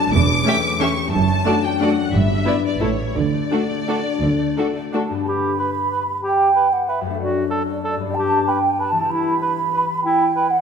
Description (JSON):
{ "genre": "classical, orchestral ballroom waltz", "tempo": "162-204 BPM", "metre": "3/4", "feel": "rubato", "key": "D major, G major from 5.3 s", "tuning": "A4 = 440 Hz", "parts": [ { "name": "rich symphonic violin section", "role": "melody", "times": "0.0-4.9 s", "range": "C#5 to D6", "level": "-24 LUFS", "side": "left 1 dB", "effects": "none" }, { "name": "concert harp", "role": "arpeggios", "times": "0.0-10.6 s", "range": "E2 to B4", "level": "-24 LUFS", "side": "left 8 dB", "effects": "none" }, { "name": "rich studio cello section", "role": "bass", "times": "0.1-4.5 s", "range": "E2 to D3", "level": "-23 LUFS", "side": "right 5 dB", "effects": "none" }, { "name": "rich symphonic double bass section", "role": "bass", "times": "0.1-4.5 s", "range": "E1 to D2", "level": "-22 LUFS", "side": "right 4 dB", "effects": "none" }, { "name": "rich symphonic viola section", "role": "accompaniment", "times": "0.4-5.0 s", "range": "A3 to E4", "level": "-25 LUFS", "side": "right 2 dB", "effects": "none" }, { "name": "rich chamber violin section", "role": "second line", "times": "0.5-5.0 s", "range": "E4 to E5", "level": "-27 LUFS", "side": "left 3 dB", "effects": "none" }, { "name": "mellow hollow small flute group", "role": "second line", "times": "4.9-10.6 s", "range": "D5 to B5", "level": "-19 LUFS", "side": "right 3 dB", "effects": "none" }, { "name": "bright clarinet", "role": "second line", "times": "5.3-10.3 s", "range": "E4 to G4", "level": "-25 LUFS", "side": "left 2 dB", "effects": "none" }, { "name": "mellow cor anglais", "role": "second line", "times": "5.6-10.5 s", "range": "A4 to B4", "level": "-26 LUFS", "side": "right 4 dB", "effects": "none" } ], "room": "moderate concert hall reverb, RT60 1.7 s", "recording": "none", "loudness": "-17 LUFS", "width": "side -6 dB against mid", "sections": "0.0-5.3 A section; 5.3-10.6 B section", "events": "none", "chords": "0.1 A7/E; 1.1 D/F#; 2.1 Em7/G; 2.8 A; 3.2 D; 5.3 G; 9.1 Em" }